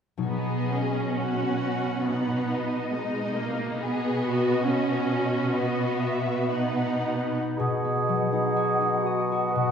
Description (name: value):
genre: classical, slow romantic movement for symphony orchestra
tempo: 50-70 BPM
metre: 4/4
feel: rubato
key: B major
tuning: A4 = 440 Hz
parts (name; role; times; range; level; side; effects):
- concert harp; arpeggios; 0.2-9.7 s; B2 to D#5; -30 LUFS; left 3 dB; none
- dark symphonic violin section; melody; 0.3-7.4 s; D#5 to F#5; -35 LUFS; left 4 dB; none
- warm symphonic violin section; second line; 0.3-7.4 s; D#4 to G#4; -31 LUFS; left 2 dB; none
- rich symphonic viola section; accompaniment; 0.3-7.3 s; G#3 to C#4; -30 LUFS; right 2 dB; none
- warm chamber cello section; bass; 0.3-7.3 s; B2; -29 LUFS; right 3 dB; none
- warm clarinet; second line; 7.0-9.7 s; D#4 to B4; -28 LUFS; left 1 dB; none
- large flute ensemble; second line; 7.6-9.7 s; F#5; -32 LUFS; right 1 dB; none
- mellow oboe; second line; 7.6-9.7 s; D#5; -30 LUFS; right 3 dB; none
- mellow bassoon; accompaniment; 7.6-9.7 s; B2; -29 LUFS; equal; none
room: wet scoring stage reverb, RT60 1.8 s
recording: heard from further back in the room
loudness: -24 LUFS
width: side -7 dB against mid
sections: 0.3-7.6 A section; 7.6-9.7 B section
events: none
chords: 0.3 B